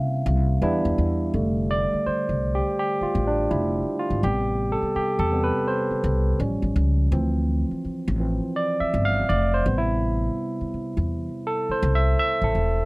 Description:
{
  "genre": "R&B",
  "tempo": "83 BPM",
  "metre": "4/4",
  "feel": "swing 63% on 16ths",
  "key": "A minor",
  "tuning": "A4 = 444 Hz",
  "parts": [
    { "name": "kalimba", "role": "melody", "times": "0.0-0.9 s", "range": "E5", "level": "-36 LUFS", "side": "right 1 dB", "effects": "tape echo" },
    { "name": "barky tine electric piano", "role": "accompaniment", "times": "0.0-12.9 s", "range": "C3 to F5", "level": "-24 LUFS", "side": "right 1 dB", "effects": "overdrive" },
    { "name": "upright bass", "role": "bass", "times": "0.0-12.9 s", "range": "E1 to C3", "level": "-24 LUFS", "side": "equal", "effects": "none" }
  ],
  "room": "little or no reverb",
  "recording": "dry, close 1970s-style studio recording",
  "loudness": "-21 LUFS",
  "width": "side -24 dB against mid",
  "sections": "0.0-1.3 A section; 1.3-12.9 B section",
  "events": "tine electric piano solo 1.3-12.9",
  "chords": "0.0 C7b9; 0.6 Em7; 1.3 F69; 4.2 Am7; 6.4 Aaug7; 7.1 Dm7; 9.6 Am7"
}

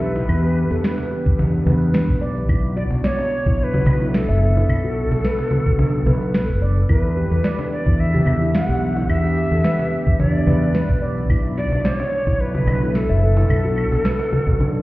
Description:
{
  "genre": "organic downtempo",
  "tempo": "109 BPM",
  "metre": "4/4",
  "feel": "swing 53% on 16ths",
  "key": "E minor",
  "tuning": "A4 = 440 Hz",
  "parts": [
    { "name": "breathy Native American-style cedar flute", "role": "melody", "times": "0.0-14.8 s", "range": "A4 to F#5", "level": "-26 LUFS", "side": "equal", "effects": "tape echo" },
    { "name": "airy breathy pad", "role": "sustained chords", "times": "0.0-14.8 s", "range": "B2 to A4", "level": "-26 LUFS", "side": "equal", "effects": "chorus, sidechain pumping" },
    { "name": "mellow fretless electric bass", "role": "bass", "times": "0.0-14.8 s", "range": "F#1 to E2", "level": "-19 LUFS", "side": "equal", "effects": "none" },
    { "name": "handpan", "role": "arpeggios", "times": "0.2-14.7 s", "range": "D4 to E5", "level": "-27 LUFS", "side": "right 1 dB", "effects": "digital delay" },
    { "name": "electronic shaker, claves and snare drum", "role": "drums", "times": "0.2-14.8 s", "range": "none", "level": "-25 LUFS", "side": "equal", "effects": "none" },
    { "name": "cajon", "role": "percussion", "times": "0.2-14.7 s", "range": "none", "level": "-24 LUFS", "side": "equal", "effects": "none" },
    { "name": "electronic kick drum", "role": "drums", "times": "1.3-14.6 s", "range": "none", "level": "-19 LUFS", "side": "equal", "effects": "none" }
  ],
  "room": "light reverb",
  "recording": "heard muffled through a wall, stone room reverb, EQ",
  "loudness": "-16 LUFS",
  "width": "side -18 dB against mid",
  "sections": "0.0-14.8 A section",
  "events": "none",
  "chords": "0.0 Em7; 2.5 Bm7; 6.9 Em7; 11.3 Bm7"
}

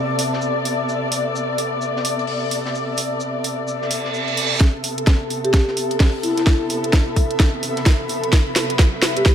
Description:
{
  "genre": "bass house",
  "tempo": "129 BPM",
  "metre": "4/4",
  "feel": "swing 61% on 16ths",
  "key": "A minor",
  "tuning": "A4 = 444 Hz",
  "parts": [
    { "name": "muted studio string section", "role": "sustained chords", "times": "0.0-9.3 s", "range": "C3 to D5", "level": "-25 LUFS", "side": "left 2 dB", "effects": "sidechain pumping" },
    { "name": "granular cloud pad", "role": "texture", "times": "0.0-9.3 s", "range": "A4 to B5", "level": "-26 LUFS", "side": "equal", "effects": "built-in reverb, sidechain pumping" },
    { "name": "garage drum kit", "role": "drums", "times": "0.2-9.3 s", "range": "hi-hat, snare drum", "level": "-22 LUFS", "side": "right 1 dB", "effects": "overdrive" },
    { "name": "modern studio drum kit", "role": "drums", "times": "0.2-9.3 s", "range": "hi-hat, shaker, snare drum", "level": "-34 LUFS", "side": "left 1 dB", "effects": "high-pass filter on hats, low-pass filter on hats, high-pass filter on snare, low-pass filter on snare, high-pass filter on perc, low-pass filter on perc, high-pass filter on room, low-pass filter on room" },
    { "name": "reverse cymbal and riser", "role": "sound effects", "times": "3.9-9.3 s", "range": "none", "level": "-28 LUFS", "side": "right 5 dB", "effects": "none" },
    { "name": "electronic kick drum", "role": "drums", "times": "4.6-9.3 s", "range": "none", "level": "-14 LUFS", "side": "equal", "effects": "overdrive" },
    { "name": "marimba with soft mallets", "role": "melody", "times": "5.4-9.3 s", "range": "E4 to G4", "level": "-23 LUFS", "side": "left 1 dB", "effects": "digital delay" }
  ],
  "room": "light reverb, small room ambience",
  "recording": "none",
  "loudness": "-17 LUFS",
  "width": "side -9 dB against mid",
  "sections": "0.0-4.6 A section; 4.6-9.3 B section",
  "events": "reverse cymbal 3.9-4.6; build-up 4.6-9.3; drum fill 4.6-9.3",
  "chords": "0.0 Amadd9"
}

